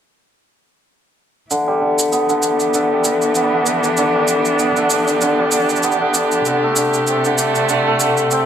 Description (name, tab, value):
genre	folktronica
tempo	97 BPM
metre	4/4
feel	swing 56% on 16ths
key	E minor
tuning	A4 = 440 Hz
part	dark string quartet	sustained chords	1.5-8.5 s	C3 to G4	-19 LUFS	right 2 dB	plate reverb
part	hammered dulcimer	arpeggios	1.5-8.5 s	D3 to D4	-16 LUFS	left 1 dB	low-pass filter, tape echo, plate reverb
part	cabasa	drums	1.5-8.4 s	none	-22 LUFS	right 2 dB	overdrive
room	moderate studio reverb, RT60 0.5 s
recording	none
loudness	-14 LUFS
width	side -9 dB against mid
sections	1.5-8.5 A section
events	filter sweep on hammered dulcimer 1.5-8.5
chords	1.5 Em7; 6.5 D7sus4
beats	| 1.50 2.12 2.74 3.36 | 3.98 4.60 5.21 5.83 | 6.45 7.07 7.69 8.31